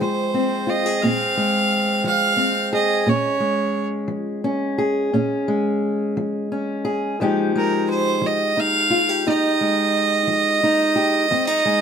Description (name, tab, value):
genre	acoustic country blues, solo or duo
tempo	58 BPM (dotted quarters)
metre	12/8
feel	straight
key	unclear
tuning	A4 = 440 Hz
part	bright fiddle	melody	0.0-11.8 s	Bb4 to F5	-19 LUFS	right 3 dB	plate reverb
part	fingerpicked steel-string acoustic guitar	accompaniment	0.0-11.8 s	F2 to Ab4	-20 LUFS	left 1 dB	none
room	moderate small room reverb, RT60 0.5 s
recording	none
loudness	-18 LUFS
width	side -7 dB against mid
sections	0.0-11.8 A section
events	none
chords	0.0 Bbm9; 7.2 Fm9